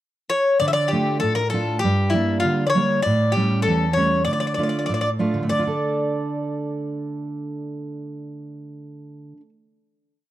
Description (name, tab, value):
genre	greek folk, Greek bouzouki band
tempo	98 BPM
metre	2/4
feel	straight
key	D harmonic minor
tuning	A4 = 440 Hz
part	Greek bouzouki	melody	0.3-9.4 s	E4 to E5	-21 LUFS	left 2 dB	none
part	fingerpicked steel-string acoustic guitar	accompaniment	0.6-9.5 s	E2 to A4	-23 LUFS	right 2 dB	none
room	studio reverb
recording	dry, close 1970s-style studio recording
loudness	-19 LUFS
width	side -14 dB against mid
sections	0.0-0.6 pickup bar; 0.6-5.5 A section; 5.5-7.9 final chord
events	none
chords	0.0 N.C.; 0.6 Dm; 1.8 Gm; 3.0 A7; 4.3 Dm; 5.5 D5